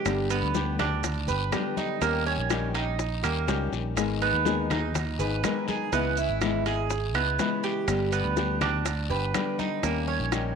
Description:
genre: latin, Cuban son and guajira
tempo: 123 BPM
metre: 4/4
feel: straight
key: unclear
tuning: A4 = 440 Hz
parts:
  - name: flamenco guitar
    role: accompaniment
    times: 0.0-10.6 s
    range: C#3 to G#4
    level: -31 LUFS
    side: left 9 dB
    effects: none
  - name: Cuban tres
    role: arpeggios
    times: 0.0-10.5 s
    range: A#3 to B4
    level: -29 LUFS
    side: right 10 dB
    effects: none
  - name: fingered electric bass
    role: bass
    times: 0.1-10.6 s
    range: G1 to D#2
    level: -30 LUFS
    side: right 1 dB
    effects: none
  - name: bongos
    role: percussion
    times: 0.1-10.6 s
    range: none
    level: -34 LUFS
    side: left 10 dB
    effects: none
  - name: claves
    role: percussion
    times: 0.1-10.6 s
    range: none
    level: -40 LUFS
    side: left 8 dB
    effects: none
  - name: congas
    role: percussion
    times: 0.1-10.6 s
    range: none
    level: -37 LUFS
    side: left 6 dB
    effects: none
  - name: guiro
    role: percussion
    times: 0.1-10.6 s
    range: none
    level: -39 LUFS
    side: left 11 dB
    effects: none
  - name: maracas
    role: percussion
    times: 0.1-10.6 s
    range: none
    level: -40 LUFS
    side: right 12 dB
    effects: none
  - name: timbales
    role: percussion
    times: 0.1-10.6 s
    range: none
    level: -36 LUFS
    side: right 12 dB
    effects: none
room: moderate echo chamber reverb, RT60 1.8 s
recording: 1960s-style stereo with parts hard left and right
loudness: -24 LUFS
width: side -6 dB against mid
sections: 0.0-10.6 A section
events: none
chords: 0.1 G; 2.0 D#7; 4.0 G#m; 5.9 C#m7; 7.9 G; 9.8 D#7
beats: | 0.06 0.55 1.04 1.52 | 2.01 2.50 2.99 3.48 | 3.97 4.46 4.95 5.44 | 5.92 6.41 6.90 7.39 | 7.88 8.37 8.86 9.34 | 9.83 10.32

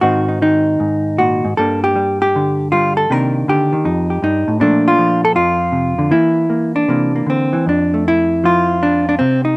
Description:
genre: solo jazz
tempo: 157 BPM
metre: 4/4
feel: swing 67% on 8ths, rubato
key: unclear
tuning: A4 = 440 Hz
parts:
  - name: hollow-body jazz guitar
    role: solo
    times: 0.0-9.6 s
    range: F2 to Bb4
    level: -12 LUFS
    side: equal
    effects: none
room: little or no reverb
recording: recorded outdoors, with no room sound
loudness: -12 LUFS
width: side -27 dB against mid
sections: 0.0-7.7 A section; 7.7-9.6 B section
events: none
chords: 0.0 G#7; 1.6 Gm; 3.1 Cm9; 3.9 F9; 4.6 Bbmaj9; 6.1 Dsus2/E; 6.9 C9; 7.7 F6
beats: | 0.02 0.40 0.79 1.18 | 1.57 1.96 2.34 2.72 | 3.10 3.47 3.85 4.22 | 4.60 4.98 5.35 5.73 | 6.12 6.50 6.88 7.27 | 7.67 8.06 8.45 8.83 | 9.21

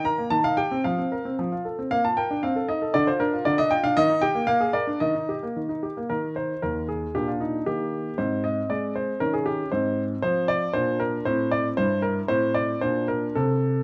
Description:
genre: classical-period piano sonatina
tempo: 116 BPM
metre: 2/4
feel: rubato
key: Eb major from 4.0 s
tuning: A4 = 445 Hz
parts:
  - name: clear grand piano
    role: solo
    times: 0.0-13.8 s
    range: Eb2 to Bb5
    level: -25 LUFS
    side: equal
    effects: none
room: moderate large studio reverb, RT60 1.4 s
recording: dark, warm production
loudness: -25 LUFS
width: mono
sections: 0.0-6.1 A section; 6.1-13.8 B section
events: none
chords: 0.3 Cm/Eb; 0.8 Fsus4; 1.4 F; 1.9 Bb; 2.4 Adim/C; 3.0 Dmadd11; 4.0 Eb; 4.5 Bb7; 5.0 Eb; 6.1 N.C.; 7.2 Bb; 7.7 Eb; 8.2 Ab; 9.2 Eb7; 9.7 Ab; 10.2 F5; 10.7 Bb; 11.3 Amadd11; 11.8 Edim/G; 12.3 Amadd11; 12.8 Bbadd9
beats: 0.31 | 0.84 1.38 | 1.91 2.43 | 2.95 3.46 | 3.97 4.49 | 5.02 5.56 | 6.10 6.63 | 7.15 7.67 | 8.18 8.70 | 9.21 9.72 | 10.23 10.75 | 11.26 11.78 | 12.30 12.83 | 13.37

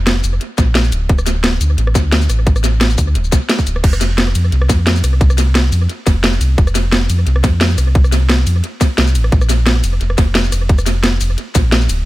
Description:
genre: liquid drum and bass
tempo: 175 BPM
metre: 4/4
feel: swing 54% on 16ths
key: F major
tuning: A4 = 438 Hz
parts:
  - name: sub bass with octave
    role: bass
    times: 0.0-12.0 s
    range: D1 to F2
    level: -14 LUFS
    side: equal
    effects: none
  - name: drum and bass drum kit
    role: drums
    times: 0.1-12.0 s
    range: crash cymbal, hi-hat, ride cymbal, rim click, shaker, snare drum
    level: -17 LUFS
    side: equal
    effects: overdrive, analog delay
  - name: electronic kick drum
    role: drums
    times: 0.6-11.6 s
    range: none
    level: -12 LUFS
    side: equal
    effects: overdrive
room: digital ambience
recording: echo-heavy mix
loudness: -12 LUFS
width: side -17 dB against mid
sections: 0.0-12.1 A section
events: none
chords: none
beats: 0.07 0.41 0.75 | 1.09 1.44 1.78 2.12 | 2.46 2.81 3.15 3.49 | 3.84 4.18 4.52 4.87 | 5.21 5.55 5.89 6.24 | 6.58 6.92 7.26 7.61 | 7.95 8.29 8.64 8.98 | 9.32 9.66 10.01 10.35 | 10.69 11.04 11.38 11.72

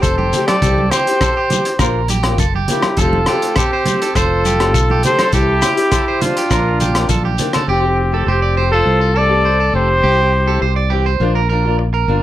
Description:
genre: highlife guitar band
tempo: 102 BPM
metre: 4/4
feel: straight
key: F major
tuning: A4 = 440 Hz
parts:
  - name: warm trumpet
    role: melody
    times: 0.0-10.9 s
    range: F4 to D5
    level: -17 LUFS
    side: equal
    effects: none
  - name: breathy trumpet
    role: second line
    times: 0.0-10.9 s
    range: C4 to A4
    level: -24 LUFS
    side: left 5 dB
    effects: none
  - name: fingerpicked steel-string acoustic guitar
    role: accompaniment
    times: 0.0-12.2 s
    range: E3 to G4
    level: -23 LUFS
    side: left 5 dB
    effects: none
  - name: electric guitar at the edge of break-up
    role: arpeggios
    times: 0.0-12.2 s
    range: G4 to D5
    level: -21 LUFS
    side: right 7 dB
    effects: slapback echo
  - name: fingered electric bass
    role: bass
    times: 0.0-12.2 s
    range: F1 to C2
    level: -17 LUFS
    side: equal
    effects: none
  - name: crunchy breakbeat drum kit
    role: drums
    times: 0.0-7.7 s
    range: hi-hat, kick drum, rim click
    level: -20 LUFS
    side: equal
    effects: none
  - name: shekere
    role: percussion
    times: 0.0-7.5 s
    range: none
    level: -24 LUFS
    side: left 6 dB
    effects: none
  - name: congas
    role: percussion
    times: 0.2-7.7 s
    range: none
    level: -23 LUFS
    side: right 3 dB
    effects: none
  - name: agogo bells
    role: percussion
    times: 0.5-7.7 s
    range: none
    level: -26 LUFS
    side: left 7 dB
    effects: none
room: light reverb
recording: none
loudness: -12 LUFS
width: side -13 dB against mid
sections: 0.0-7.7 A section; 7.7-12.2 B section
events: drum fill 7.1-7.7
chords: 0.0 Fadd9; 0.6 C; 1.8 Bb; 3.0 Fadd9; 5.3 C; 6.5 Bb; 7.7 Fadd9; 10.0 C; 11.2 Bb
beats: 0.04 | 0.63 1.22 1.80 2.39 | 2.98 3.57 4.16 4.75 | 5.33 5.92 6.51 7.10 | 7.68 8.27 8.86 9.44 | 10.03 10.62 11.21 11.79

